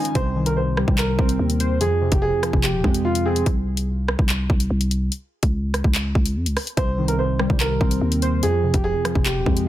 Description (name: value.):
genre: hip hop, drill.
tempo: 145 BPM.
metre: 4/4.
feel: half-time.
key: C phrygian.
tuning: A4 = 436 Hz.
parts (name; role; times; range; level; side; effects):
warm upright piano; melody; 0.0-3.4, 6.8-9.6 s; F4 to Ab5; -25 LUFS; right 2 dB; none.
warbly lo-fi synth keys; accompaniment; 0.0-3.5, 6.8-9.7 s; F2 to C5; -24 LUFS; left 1 dB; chorus.
drill drum kit; drums; 0.1-9.7 s; handclaps, hi-hat, kick drum, rim click; -22 LUFS; equal; none.
growling 808-style bass; bass; 0.2-9.7 s; Eb1 to F2; -23 LUFS; equal; none.
room: small room ambience.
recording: dense, heavily limited modern master.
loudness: -18 LUFS.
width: side -13 dB against mid.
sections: 0.2-9.7 A section.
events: break 0.0.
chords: 0.2 Cm; 1.8 Fm; 3.5 N.C.; 6.8 Cm; 8.4 Fm.